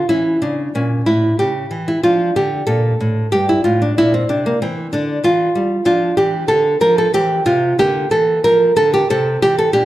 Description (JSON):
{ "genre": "classical, baroque-style dance for nylon-string guitar", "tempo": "93 BPM", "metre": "3/4", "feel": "rubato", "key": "D minor", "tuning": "A4 = 440 Hz", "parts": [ { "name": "nylon-string guitar", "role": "solo", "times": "0.0-9.8 s", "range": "G2 to Bb4", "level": "-13 LUFS", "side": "equal", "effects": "none" } ], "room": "moderate recital hall reverb, RT60 1.6 s", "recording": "dark, warm production, lossy compression artefacts", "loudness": "-13 LUFS", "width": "side -15 dB against mid", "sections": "0.0-9.8 A section", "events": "none", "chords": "0.1 A; 2.0 Dm; 4.0 Bb; 5.9 Dm; 7.1 C/E; 7.8 Bb/D; 9.1 Am/C" }